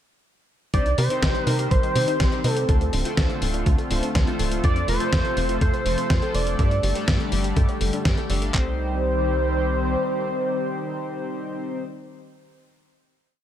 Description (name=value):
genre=italo disco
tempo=123 BPM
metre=4/4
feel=straight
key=C dorian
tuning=A4 = 436 Hz
part: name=wide unison lead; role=melody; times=0.7-11.8 s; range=A4 to D5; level=-27 LUFS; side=right 1 dB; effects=analog delay
part: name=warm analog pad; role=sustained chords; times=0.7-11.8 s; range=C3 to C5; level=-28 LUFS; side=left 1 dB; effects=chorus, tremolo
part: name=soft round pluck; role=arpeggios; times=0.7-8.8 s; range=A3 to Eb5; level=-34 LUFS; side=right 2 dB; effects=chorus, vintage 12-bit sampler grit, ping-pong delay
part: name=chorused polysynth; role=stabs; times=0.7-11.8 s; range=C3 to G5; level=-32 LUFS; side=left 3 dB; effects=ping-pong delay
part: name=tight sequencer bass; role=bass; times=0.7-10.0 s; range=D1 to C3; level=-24 LUFS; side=equal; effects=tube saturation
part: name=dusty soul sampler-style drum kit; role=drums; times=0.7-8.7 s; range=handclaps, kick drum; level=-22 LUFS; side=equal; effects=none
part: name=dusty soul sampler-style drum kit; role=drums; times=0.7-8.5 s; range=hi-hat, snare drum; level=-28 LUFS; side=equal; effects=none
room=moderate plate reverb, RT60 1.8 s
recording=dreamy mix soaked in reverb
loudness=-20 LUFS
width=side -10 dB against mid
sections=0.7-8.5 chorus; 8.5-12.4 final chord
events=none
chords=0.7 Cm; 2.7 Dm7; 4.6 F; 6.6 Gsus2; 8.5 Cm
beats=| 0.74 1.23 1.71 2.20 | 2.69 3.18 3.66 4.15 | 4.64 5.13 5.62 6.10 | 6.59 7.08 7.57 8.05 | 8.54 9.03 9.52 10.01 | 10.49 10.98 11.47